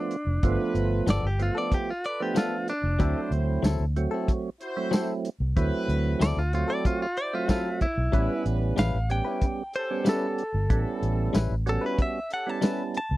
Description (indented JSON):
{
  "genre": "straight-eighth soul blues",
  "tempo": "94 BPM",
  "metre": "4/4",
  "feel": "straight",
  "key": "unclear",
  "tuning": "A4 = 440 Hz",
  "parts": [
    { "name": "direct-recorded clean electric guitar", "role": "melody", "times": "0.0-13.2 s", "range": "D4 to A5", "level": "-30 LUFS", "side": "equal", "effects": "none" },
    { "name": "percussive tonewheel organ", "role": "accompaniment", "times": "0.0-13.0 s", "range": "F3 to E5", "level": "-30 LUFS", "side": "right 4 dB", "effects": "slow rotary speaker" },
    { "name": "warm soul drum kit", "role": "drums", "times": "0.1-13.1 s", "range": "hi-hat, kick drum, snare drum, tambourine", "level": "-25 LUFS", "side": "equal", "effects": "none" },
    { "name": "vintage muted fingered electric bass", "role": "bass", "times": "0.3-13.2 s", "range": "F1 to D2", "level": "-26 LUFS", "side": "equal", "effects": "none" },
    { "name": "clear horn section", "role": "sustained chords", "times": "0.4-12.8 s", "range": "C#4 to C5", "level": "-37 LUFS", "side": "left 1 dB", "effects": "none" },
    { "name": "direct-recorded clean electric guitar", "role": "stabs", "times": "1.1-12.8 s", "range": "F3 to B4", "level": "-31 LUFS", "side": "left 6 dB", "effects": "none" }
  ],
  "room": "little or no reverb",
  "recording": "dry, close 1970s-style studio recording",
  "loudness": "-24 LUFS",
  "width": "side -17 dB against mid",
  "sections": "0.0-13.2 A section",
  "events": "clean electric guitar solo 0.0-13.2",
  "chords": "0.0 G9; 3.0 D9; 8.1 A9"
}